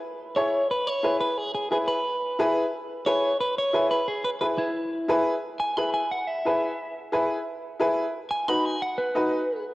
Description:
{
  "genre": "latin",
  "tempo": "177 BPM",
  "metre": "4/4",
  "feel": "straight",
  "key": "E major",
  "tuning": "A4 = 441 Hz",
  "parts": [
    { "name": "electric guitar at the edge of break-up", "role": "melody", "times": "0.4-9.6 s", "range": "E4 to B5", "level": "-26 LUFS", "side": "equal", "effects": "spring reverb, cassette tape" },
    { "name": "bright upright piano", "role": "accompaniment", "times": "0.4-9.4 s", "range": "D#4 to C#5", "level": "-26 LUFS", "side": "equal", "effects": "cassette tape" }
  ],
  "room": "moderate lush hall reverb, RT60 2.6 s",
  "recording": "home recording on cassette",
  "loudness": "-23 LUFS",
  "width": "side -18 dB against mid",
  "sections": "0.0-5.4 A section; 5.4-9.7 B section",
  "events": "clean electric guitar solo 5.4-9.7",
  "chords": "0.0 E; 8.1 B",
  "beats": "| 0.02 0.36 0.70 1.04 | 1.38 1.71 2.05 2.39 | 2.73 3.07 3.40 3.74 | 4.08 4.42 4.76 5.09 | 5.43 5.77 6.11 6.45 | 6.79 7.13 7.46 7.80 | 8.14 8.48 8.82 9.15 | 9.49"
}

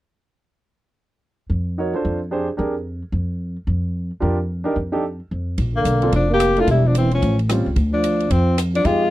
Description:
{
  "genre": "jazz, small-group swing and bop",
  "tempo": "220 BPM",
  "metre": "4/4",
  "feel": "swing 60% on 8ths",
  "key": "Bb major",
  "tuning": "A4 = 440 Hz",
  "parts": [
    { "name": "upright bass", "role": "bass", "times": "1.5-9.1 s", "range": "E1 to F2", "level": "-20 LUFS", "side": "equal", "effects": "none" },
    { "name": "clear concert grand piano", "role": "accompaniment", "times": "1.8-9.0 s", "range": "G3 to Db5", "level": "-22 LUFS", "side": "right 2 dB", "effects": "none" },
    { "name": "compact cocktail drum kit", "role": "drums", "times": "5.6-8.9 s", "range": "hi-hat, kick drum, ride cymbal, rim click", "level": "-28 LUFS", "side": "equal", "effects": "none" },
    { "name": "warm tenor saxophone", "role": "melody", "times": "5.8-9.1 s", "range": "Bb3 to G4", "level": "-20 LUFS", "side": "left 3 dB", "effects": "none" },
    { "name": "breathy trombone", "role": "second line", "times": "5.8-9.1 s", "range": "D3 to Bb3", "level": "-22 LUFS", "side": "right 4 dB", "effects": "none" }
  ],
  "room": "little or no reverb",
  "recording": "dry, close 1970s-style studio recording",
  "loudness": "-18 LUFS",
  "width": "side -15 dB against mid",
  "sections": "1.2-5.6 A section; 5.6-9.1 B section",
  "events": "none",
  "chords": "1.2 Bbmaj9; 2.3 Bb13; 3.4 Fsus24; 4.5 F13; 5.0 N.C.; 5.6 Bbmaj7; 6.7 Dm11/E (rootless); 7.2 A7alt; 7.8 Dm7",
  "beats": "| 1.23 1.50 1.77 2.04 | 2.31 2.59 2.86 3.13 | 3.40 3.67 3.95 4.22 | 4.49 4.76 5.03 5.31 | 5.58 5.85 6.12 6.40 | 6.67 6.94 7.21 7.49 | 7.76 8.03 8.31 8.58 | 8.85"
}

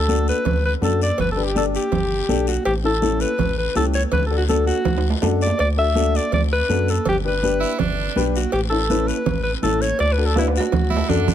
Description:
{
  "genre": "latin, cumbia",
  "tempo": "164 BPM",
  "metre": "4/4",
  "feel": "straight",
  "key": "D major",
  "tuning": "A4 = 440 Hz",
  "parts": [
    { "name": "breathy alto saxophone", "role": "melody", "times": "0.0-11.3 s", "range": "E4 to E5", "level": "-22 LUFS", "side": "left 1 dB", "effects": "none" },
    { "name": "rubbery square bass", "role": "bass", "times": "0.0-11.3 s", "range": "G1 to F#2", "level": "-22 LUFS", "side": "equal", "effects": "none" },
    { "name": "dark upright piano", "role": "accompaniment", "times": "0.1-11.3 s", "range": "C#4 to D5", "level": "-25 LUFS", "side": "left 6 dB", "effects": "none" },
    { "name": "congas", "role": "percussion", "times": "0.1-11.3 s", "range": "none", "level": "-25 LUFS", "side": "right 5 dB", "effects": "none" },
    { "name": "guiro", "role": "percussion", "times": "0.1-11.3 s", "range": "none", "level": "-34 LUFS", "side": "left 9 dB", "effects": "none" },
    { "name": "cowbell and timbales", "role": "percussion", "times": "0.5-11.1 s", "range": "none", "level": "-30 LUFS", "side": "right 5 dB", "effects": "none" },
    { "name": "edgy tenor saxophone", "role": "second line", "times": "7.6-8.2, 10.9-11.3 s", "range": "D4 to E4", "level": "-29 LUFS", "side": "right 6 dB", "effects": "none" }
  ],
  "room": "light reverb",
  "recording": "none",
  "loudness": "-17 LUFS",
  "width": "side -10 dB against mid",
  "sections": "0.0-11.3 A section",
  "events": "drum fill 4.9-5.6, 10.4-11.3",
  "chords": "0.0 D; 1.2 G; 2.7 A7; 4.1 D; 7.1 G; 8.5 A; 10.0 D",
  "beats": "0.09 0.45 0.82 | 1.19 1.55 1.92 2.29 | 2.65 3.02 3.39 3.75 | 4.12 4.49 4.86 5.22 | 5.59 5.96 6.33 6.69 | 7.06 7.43 7.79 8.16 | 8.53 8.89 9.26 9.63 | 9.99 10.36 10.73 11.10"
}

